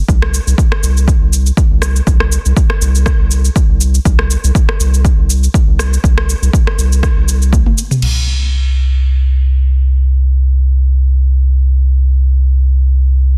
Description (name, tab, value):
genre	afro house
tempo	121 BPM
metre	4/4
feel	swing 55% on 16ths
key	unclear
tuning	A4 = 440 Hz
part	round analog bass	bass	0.0-13.4 s	G1 to C2	-13 LUFS	equal	sidechain pumping
part	afro-pop drum kit	drums	0.1-8.1 s	crash cymbal, rim click, shaker, toms	-22 LUFS	equal	studio reverb, soft clipping on snare
part	electronic kick drum	drums	0.1-7.6 s	none	-14 LUFS	equal	overdrive, studio reverb
room	little or no reverb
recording	dense, heavily limited modern master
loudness	-12 LUFS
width	mono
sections	0.0-8.0 A section; 8.0-13.4 B section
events	drum fill 7.5-8.0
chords	none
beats	| 0.09 0.58 1.08 1.58 | 2.07 2.57 3.06 3.56 | 4.05 4.55 5.05 5.54 | 6.04 6.54 7.03 7.53 | 8.02 8.52 9.01 9.51 | 10.01 10.50 11.00 11.49 | 11.99 12.48 12.98